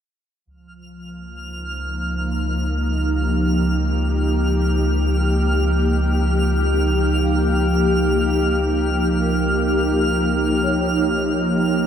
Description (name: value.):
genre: ambient.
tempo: free time.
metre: none.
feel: none.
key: Db lydian.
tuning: A4 = 440 Hz.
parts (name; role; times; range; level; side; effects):
ethereal airy pad; sustained chords; 1.0-11.9 s; F3 to G4; -20 LUFS; equal; ensemble chorus, built-in reverb.
warm sub bass; bass; 0.5-11.9 s; Db2; -22 LUFS; equal; none.
twinkling granular texture; texture; 0.7-11.9 s; F6; -27 LUFS; right 1 dB; built-in reverb.
vibraphone with medium mallets; arpeggios; 3.2-11.9 s; Db4 to G5; -32 LUFS; left 2 dB; tape echo.
room: wet cathedral reverb, RT60 6.8 s.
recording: in a vast, echoing space.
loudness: -17 LUFS.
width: side -8 dB against mid.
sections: 0.5-11.9 A section.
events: fade-in on vibraphone 0.5-11.9.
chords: 0.5 Dbadd9.